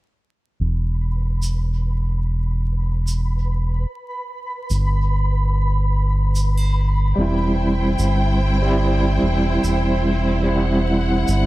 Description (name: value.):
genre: trip hop.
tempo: 73 BPM.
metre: 4/4.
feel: swing 55% on 16ths.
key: E minor.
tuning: A4 = 443 Hz.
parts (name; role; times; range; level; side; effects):
round analog bass; bass; 0.6-11.5 s; E1 to G1; -19 LUFS; equal; none.
flickering grainy texture; texture; 0.6-11.5 s; B5; -32 LUFS; right 1 dB; built-in reverb.
tube shaker and triangle; percussion; 1.4-11.5 s; none; -35 LUFS; right 2 dB; none.
overdriven tine electric piano; accompaniment; 7.2-11.5 s; G3 to E4; -20 LUFS; right 1 dB; medium tremolo, tape echo.
clear studio string section; sustained chords; 7.2-11.5 s; E4 to G5; -25 LUFS; equal; none.
room: little or no reverb.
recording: echo-heavy mix, vinyl crackle.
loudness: -17 LUFS.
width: side -17 dB against mid.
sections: 0.6-11.5 A section.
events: none.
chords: 0.6 Em; 7.2 C/E.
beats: | 0.59 1.42 2.24 3.06 | 3.88 4.70 5.53 6.35 | 7.17 7.99 8.81 9.63 | 10.46 11.28.